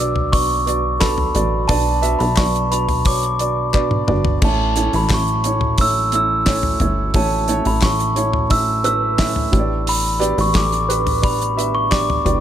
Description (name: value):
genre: piano-driven pop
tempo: 88 BPM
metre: 4/4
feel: straight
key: A mixolydian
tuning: A4 = 441 Hz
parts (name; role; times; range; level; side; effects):
- glockenspiel with rubber mallets; melody; 0.0-12.4 s; A5 to E6; -20 LUFS; equal; none
- dark upright piano; accompaniment; 0.0-12.4 s; A2 to E5; -22 LUFS; right 3 dB; none
- plucky analog bass; bass; 0.0-12.4 s; G1 to B1; -22 LUFS; equal; none
- damped 70s drum kit; drums; 0.2-12.4 s; crash cymbal, handclaps, hi-hat, kick drum, snare drum, toms; -20 LUFS; equal; none
- group handclap; percussion; 1.0-12.1 s; none; -29 LUFS; left 9 dB; none
room: light reverb, small room reverb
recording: none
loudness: -15 LUFS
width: side -10 dB against mid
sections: 0.0-12.4 A section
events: drum fill 3.7-4.4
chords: 0.0 Bm; 4.4 A; 9.5 G